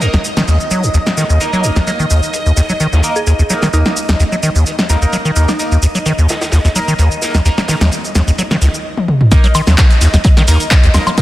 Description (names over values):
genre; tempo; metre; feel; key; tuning
acid house; 129 BPM; 4/4; swing 53% on 16ths; Eb minor; A4 = 443 Hz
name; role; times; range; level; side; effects
string machine, full ensemble; sustained chords; 0.0-11.2 s; Eb5; -23 LUFS; equal; phaser, ensemble chorus, sidechain pumping
acid bass, square; riff; 0.0-11.2 s; Db2 to Gb3; -13 LUFS; equal; tube saturation, sidechain pumping
band-passed chord stab; stabs; 0.0-11.2 s; Bb3 to Bb4; -22 LUFS; right 1 dB; phaser, tape echo
punchy analog drum machine; drums; 0.0-11.2 s; handclaps, hi-hat, shaker, snare drum, toms, woodblock; -17 LUFS; equal; none
vintage drum kit; drums; 0.0-11.2 s; hi-hat, snare drum; -26 LUFS; equal; sidechain pumping on hats, high-pass filter on hats, low-pass filter on hats, soft clipping on snare, high-pass filter on snare, low-pass filter on snare, high-pass filter on room, low-pass filter on room
glassy wavetable pluck; melody; 3.2-6.0 s; Eb4 to Ab4; -24 LUFS; right 2 dB; chorus, tape echo
electronic kick drum; drums; 9.3-11.2 s; none; -9 LUFS; equal; none
room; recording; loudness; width
light reverb, digital ambience; dense, heavily limited modern master; -10 LUFS; side -15 dB against mid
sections
0.0-9.3 A section; 9.3-11.2 B section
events
drum fill 9.0-9.3; drop 9.3-11.2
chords
0.0 Eb5